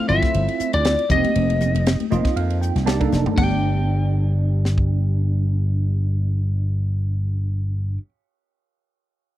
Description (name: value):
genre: electric jazz fusion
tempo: 119 BPM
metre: 4/4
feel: swing 55% on 16ths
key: G mixolydian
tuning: A4 = 440 Hz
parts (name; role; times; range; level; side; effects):
- lightly driven lead guitar; melody; 0.0-8.0 s; D5 to G5; -23 LUFS; left 2 dB; none
- tine electric piano; accompaniment; 0.0-8.0 s; G3 to A5; -26 LUFS; right 6 dB; phaser
- slap bass; bass; 0.1-8.0 s; F1 to F2; -20 LUFS; equal; none
- crisp fusion drum kit; drums; 0.1-4.9 s; crash cymbal, hi-hat, kick drum, ride cymbal, snare drum, toms; -24 LUFS; equal; none
- congas; percussion; 0.1-3.6 s; none; -27 LUFS; left 10 dB; none
room: little or no reverb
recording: dry, close 1970s-style studio recording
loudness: -18 LUFS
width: side -14 dB against mid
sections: 0.0-3.4 A section; 3.4-7.4 B section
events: tine electric piano fill 1.9-3.4; drum fill 3.1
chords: 0.0 G13sus4; 1.1 F13sus4; 3.4 G